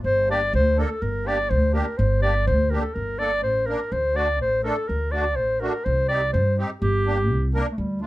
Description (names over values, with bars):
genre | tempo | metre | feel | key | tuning
klezmer | 124 BPM | 2/4 | straight | G harmonic minor | A4 = 440 Hz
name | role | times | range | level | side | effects
mellow clarinet | melody | 0.0-8.1 s | G3 to D5 | -23 LUFS | equal | none
upright bass | bass | 0.0-8.1 s | G1 to G2 | -24 LUFS | equal | none
musette accordion | accompaniment | 0.3-8.1 s | A3 to Bb4 | -28 LUFS | right 1 dB | none
room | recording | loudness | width
moderate small room reverb, RT60 0.5 s | none | -20 LUFS | side -17 dB against mid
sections
0.0-7.8 A section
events
none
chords
0.0 Gm; 3.9 D; 5.8 Cm; 6.8 Gm